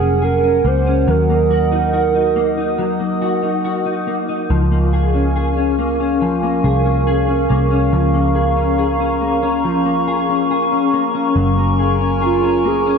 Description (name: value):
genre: dream pop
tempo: 70 BPM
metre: 4/4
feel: straight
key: Db major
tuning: A4 = 440 Hz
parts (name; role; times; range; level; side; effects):
- warbly nostalgic lead; melody; 0.0-3.7, 12.2-13.0 s; F4 to C5; -18 LUFS; right 7 dB; chorus, ping-pong delay
- warbly tape-like pad; sustained chords; 0.0-13.0 s; Bb4 to Eb6; -20 LUFS; right 2 dB; chorus, built-in reverb
- mellow electric guitar; arpeggios; 0.0-13.0 s; F3 to Ab4; -18 LUFS; left 4 dB; ensemble chorus, ping-pong delay
- vintage muted picked electric bass; bass; 0.0-13.0 s; F1 to Eb2; -19 LUFS; equal; none
room: moderate lush hall reverb, RT60 2.8 s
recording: nothing above 7.9 kHz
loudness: -14 LUFS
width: side -6 dB against mid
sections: 0.0-13.0 A section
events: none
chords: 0.0 Gbadd9; 1.1 Ebm; 4.5 Db6; 11.4 Gbadd9